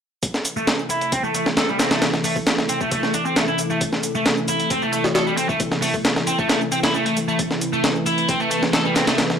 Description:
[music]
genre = breakbeat, breaks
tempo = 134 BPM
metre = 4/4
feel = straight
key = A minor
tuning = A4 = 442 Hz
[part]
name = warbly tape-like pad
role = sustained chords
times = 0.5-9.4 s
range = C3 to B4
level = -25 LUFS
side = equal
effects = chorus, built-in reverb, sidechain pumping
[part]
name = breakbeat sampler-style drum kit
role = drums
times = 0.2-9.4 s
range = hi-hat, kick drum, snare drum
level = -21 LUFS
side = equal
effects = high-pass filter on kick, studio reverb, high-pass filter on hats, high-pass filter on snare
[part]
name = shaker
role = drums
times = 0.2-9.4 s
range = none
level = -33 LUFS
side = right 4 dB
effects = studio reverb
[part]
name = distorted electric guitar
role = riff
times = 0.6-9.2 s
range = G3 to A4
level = -22 LUFS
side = equal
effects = overdrive, vintage 12-bit sampler grit, low-pass filter, tape echo
[sound]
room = light reverb, digital ambience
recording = dry, gritty hardware recording, transformer saturation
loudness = -18 LUFS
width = side -7 dB against mid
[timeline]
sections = 0.2-9.4 A section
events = filter sweep on distorted electric guitar 0.2-9.4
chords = 0.2 Am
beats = | 0.23 0.68 1.12 1.57 | 2.02 2.47 2.92 3.36 | 3.81 4.26 4.71 5.15 | 5.60 6.05 6.50 6.95 | 7.39 7.84 8.29 8.74 | 9.18

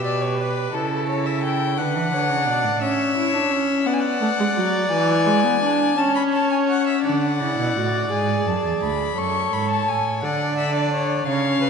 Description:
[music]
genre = classical, baroque-style fugue for string quartet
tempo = 57 BPM (dotted quarters)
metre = 6/8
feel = straight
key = D major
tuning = A4 = 440 Hz
[part]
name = warm violin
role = melody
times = 0.0-11.7 s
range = A4 to C#6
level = -24 LUFS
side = left 5 dB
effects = none
[part]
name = warm violin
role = second line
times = 0.0-11.7 s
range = A4 to D5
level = -26 LUFS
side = left 2 dB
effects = none
[part]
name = warm viola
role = accompaniment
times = 0.0-11.7 s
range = E3 to A4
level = -23 LUFS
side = right 1 dB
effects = none
[part]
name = dark cello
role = bass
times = 0.0-2.8, 7.0-11.7 s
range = D2 to E3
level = -26 LUFS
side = right 4 dB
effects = none
[sound]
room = wet concert hall reverb, RT60 1.9 s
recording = nothing above 10.4 kHz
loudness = -19 LUFS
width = side -6 dB against mid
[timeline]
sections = 0.0-7.0 A section; 7.0-11.7 B section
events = none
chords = 0.0 Em/B (rootless); 0.7 A/C#; 1.8 D; 2.8 C#m; 3.9 Bm; 4.9 E; 6.0 A/C#; 7.0 D; 8.1 E (rootless); 9.2 F#m; 10.2 D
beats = | 0.74 1.78 | 2.82 3.86 | 4.91 5.97 | 7.05 8.12 | 9.18 10.23 | 11.27

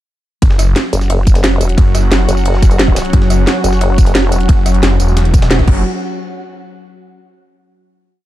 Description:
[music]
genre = dark technical drum and bass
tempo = 177 BPM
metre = 4/4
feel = straight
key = unclear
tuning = A4 = 439 Hz
[part]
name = sweeping resonant pad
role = sustained chords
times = 0.4-5.8 s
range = F#3 to F#5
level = -20 LUFS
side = left 1 dB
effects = chorus, sidechain pumping
[part]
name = snarling distorted saw bass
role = bass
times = 0.4-5.8 s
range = E1 to F#1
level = -12 LUFS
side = equal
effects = distortion, sidechain pumping
[part]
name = breakbeat sampler-style drum kit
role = drums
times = 0.4-5.7 s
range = ride cymbal, snare drum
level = -28 LUFS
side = equal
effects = high-pass filter on cymbals, high-pass filter on snare
[part]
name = drum and bass drum kit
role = drums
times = 0.4-5.7 s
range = crash cymbal, hi-hat, rim click, snare drum, tambourine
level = -17 LUFS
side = right 1 dB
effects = none
[part]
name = electronic kick drum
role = drums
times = 0.4-5.7 s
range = none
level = -9 LUFS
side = equal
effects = none
[part]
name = vowel-sweep wobble bass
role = bass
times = 0.9-4.5 s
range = F#1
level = -13 LUFS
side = equal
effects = chorus
[sound]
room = light reverb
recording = dark, warm production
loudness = -9 LUFS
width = side -14 dB against mid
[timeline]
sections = 0.4-5.8 drop; 5.8-7.2 final hit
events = drop 0.4-5.8; band accent 5.5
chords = 0.4 F#5; 5.8 N.C.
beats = | 0.42 0.76 1.10 1.44 | 1.78 2.12 2.46 2.79 | 3.13 3.47 3.81 4.15 | 4.49 4.83 5.17 5.51

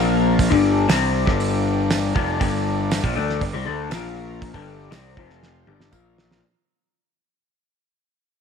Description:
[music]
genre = psychedelic rock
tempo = 119 BPM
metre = 4/4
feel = straight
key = G minor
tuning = A4 = 440 Hz
[part]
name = combo organ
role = sustained chords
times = 0.0-6.4 s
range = F3 to F5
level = -31 LUFS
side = right 11 dB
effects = none
[part]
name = electric guitar through a small old amp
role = riff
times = 0.0-6.4 s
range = F2 to D4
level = -22 LUFS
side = left 10 dB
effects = phaser
[part]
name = fuzz picked electric bass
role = bass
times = 0.0-6.4 s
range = F1 to D2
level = -24 LUFS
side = right 3 dB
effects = overdrive
[part]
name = cloth-damped thuddy drum kit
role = drums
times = 0.4-6.4 s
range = hi-hat, kick drum, snare drum, toms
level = -25 LUFS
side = right 2 dB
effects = none
[part]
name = tambourine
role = percussion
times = 0.9-6.0 s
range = none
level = -37 LUFS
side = right 14 dB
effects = none
[sound]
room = light reverb, studio reverb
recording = 1960s-style stereo with parts hard left and right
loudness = -18 LUFS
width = side -6 dB against mid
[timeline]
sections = 0.0-6.4 A section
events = fade-out 0.0-6.4; drum fill 5.4-6.4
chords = 0.0 Bb5; 0.5 Gm; 3.9 Bb5; 4.5 Gm; 5.2 F5; 5.7 Gm; 5.9 Bb5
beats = | 0.39 0.89 1.40 1.90 | 2.40 2.91 3.41 3.91 | 4.42 4.92 5.42 5.93

